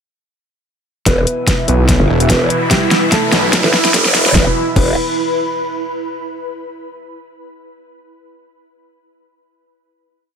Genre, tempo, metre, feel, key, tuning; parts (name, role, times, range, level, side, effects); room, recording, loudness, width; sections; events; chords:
heavy wobble dubstep; 146 BPM; 4/4; swing 54% on 16ths, half-time; E minor; A4 = 440 Hz
dark baby grand piano; melody; 1.1-4.9 s; G3 to B4; -21 LUFS; right 1 dB; ping-pong delay
lush unison pad; sustained chords; 1.1-4.5 s; B2 to E4; -21 LUFS; equal; chorus, sidechain pumping
growl bass; bass; 1.1-5.0 s; E1 to G1; -15 LUFS; equal; distortion, chorus, overdrive
dubstep drum kit; drums; 1.1-4.9 s; crash cymbal, hi-hat, snare drum; -16 LUFS; equal; overdrive
electronic kick drum; drums; 1.1-4.9 s; -18 LUFS; equal
riser; sound effects; 1.9-4.4 s; -19 LUFS; right 1 dB
ethereal airy pad; texture; 1.8-6.0 s; E4 to B5; -21 LUFS; right 1 dB; ensemble chorus, built-in reverb, sidechain pumping
snarling distorted saw bass; bass; 1.7-3.6 s; E1 to B1; -15 LUFS; equal; distortion, overdrive
light reverb; high-pass filter; -11 LUFS; side -7 dB against mid
1.1-4.4 build; 4.4-6.0 final chord
build-up 1.1-4.4; drum fill 1.1-4.4; filter sweep 1.1-4.4; riser 1.9-4.4
1.1 E5